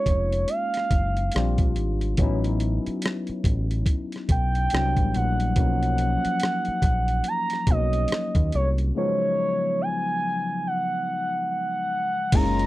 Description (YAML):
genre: R&B, neo-soul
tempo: 71 BPM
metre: 4/4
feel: swing 60% on 16ths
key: unclear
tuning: A4 = 440 Hz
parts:
  - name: gliding portamento lead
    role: melody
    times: 0.0-12.7 s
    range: C#5 to A#5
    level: -25 LUFS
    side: right 1 dB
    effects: chorus
  - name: barky tine electric piano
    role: accompaniment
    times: 0.0-12.7 s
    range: C#3 to G4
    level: -29 LUFS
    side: left 4 dB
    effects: overdrive, lush chorus
  - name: deep dub picked electric bass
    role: bass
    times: 0.1-12.7 s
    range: E#1 to D#2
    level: -24 LUFS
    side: equal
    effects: none
  - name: boom bap sampler-style drum kit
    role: drums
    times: 0.1-12.7 s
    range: crash cymbal, hi-hat, kick drum, rim click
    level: -24 LUFS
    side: equal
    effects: none
room: little or no reverb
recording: dry, close 1970s-style studio recording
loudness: -22 LUFS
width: side -17 dB against mid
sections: 0.0-12.3 A section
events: break 8.9-12.3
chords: 0.0 F#maj9; 1.3 A#69; 2.2 A69; 4.7 Cmaj7; 5.6 Bmaj7; 8.9 C#7sus4